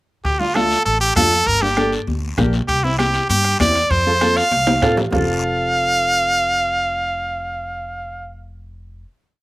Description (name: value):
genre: latin, cumbia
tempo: 197 BPM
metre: 4/4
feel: straight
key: F major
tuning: A4 = 440 Hz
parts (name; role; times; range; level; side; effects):
- brilliant trumpet; melody; 0.2-8.3 s; E4 to F5; -17 LUFS; right 1 dB; slapback echo
- upright bass; bass; 0.2-9.0 s; F1 to A2; -24 LUFS; equal; none
- bombo; percussion; 0.2-5.2 s; none; -26 LUFS; equal; none
- guiro; percussion; 0.2-5.2 s; none; -32 LUFS; left 4 dB; none
- nylon-string guitar; accompaniment; 0.4-9.0 s; A3 to A4; -23 LUFS; equal; none
- congas; percussion; 0.6-5.2 s; none; -25 LUFS; left 3 dB; none
- timbales; percussion; 2.7-5.2 s; none; -26 LUFS; right 4 dB; slapback echo
room: little or no reverb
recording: recorded outdoors, with no room sound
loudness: -15 LUFS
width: side -18 dB against mid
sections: 0.2-5.1 A section; 5.1-7.6 final chord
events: drum fill 4.5-5.1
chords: 0.2 Dm; 1.5 Gm; 2.7 C; 3.9 F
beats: | 0.25 0.55 0.86 1.16 | 1.47 1.77 2.08 2.38 | 2.69 2.99 3.30 3.60 | 3.91 4.21 4.52 4.82 | 5.13 5.43 5.74 6.04 | 6.35 6.66 6.96 7.27